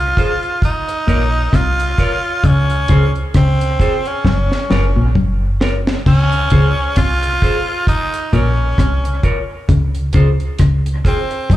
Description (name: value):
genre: roots reggae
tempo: 66 BPM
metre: 4/4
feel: swing 57% on 16ths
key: Db major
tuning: A4 = 444 Hz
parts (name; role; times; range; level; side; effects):
- raspy tenor saxophone; melody; 0.0-11.6 s; C4 to F4; -19 LUFS; equal; tape echo, slapback echo
- deep dub fingered electric bass; bass; 0.0-11.6 s; Gb1 to Db2; -16 LUFS; equal; none
- semi-hollow electric guitar; accompaniment; 0.2-11.3 s; F4 to Db5; -24 LUFS; right 1 dB; tape echo, slapback echo
- deep reggae drum kit; drums; 0.2-11.6 s; crash cymbal, hi-hat, kick drum, rim click, snare drum; -17 LUFS; equal; none
- semi-hollow electric guitar; riff; 1.1-11.6 s; Gb2 to Db3; -17 LUFS; left 2 dB; spring reverb
room: light reverb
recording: live gig heard through the venue's PA, club reverb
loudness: -13 LUFS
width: side -14 dB against mid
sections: 0.0-6.1 A section; 6.1-11.6 B section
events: drum fill 4.3-6.1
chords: 0.0 Dbmaj7 (rootless); 0.6 Bbsus24; 2.4 Dbmaj7; 4.3 Gbmaj7; 6.1 Dbmaj7; 7.9 Bbmadd9; 9.7 Dbmaj7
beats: 0.63 1.53 | 2.44 3.35 4.25 5.16 | 6.06 6.97 7.88 8.78 | 9.69 10.59 11.50